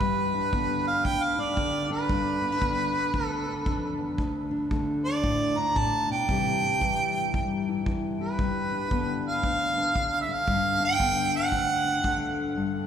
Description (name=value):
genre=acoustic country blues, solo or duo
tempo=115 BPM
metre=4/4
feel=swing 63% on 8ths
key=G mixolydian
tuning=A4 = 440 Hz
part: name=warm harmonica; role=melody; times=0.0-12.4 s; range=B4 to Bb5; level=-26 LUFS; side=right 2 dB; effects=none
part: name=fingerpicked steel-string acoustic guitar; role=accompaniment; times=0.0-12.9 s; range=D2 to G4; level=-29 LUFS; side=left 2 dB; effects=none
part: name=kick drum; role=drums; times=0.0-12.2 s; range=none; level=-33 LUFS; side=equal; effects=none
room=wet cathedral reverb, RT60 4.9 s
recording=recorded in a church or concert hall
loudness=-24 LUFS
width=side -8 dB against mid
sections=0.0-12.6 A section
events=none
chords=0.0 G; 4.2 D5; 6.3 C; 8.4 G; 11.5 D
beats=| 0.01 0.54 1.06 1.58 | 2.10 2.63 3.15 3.67 | 4.20 4.72 5.24 5.77 | 6.29 6.81 7.34 7.86 | 8.38 8.91 9.43 9.96 | 10.48 11.00 11.53 12.05 | 12.58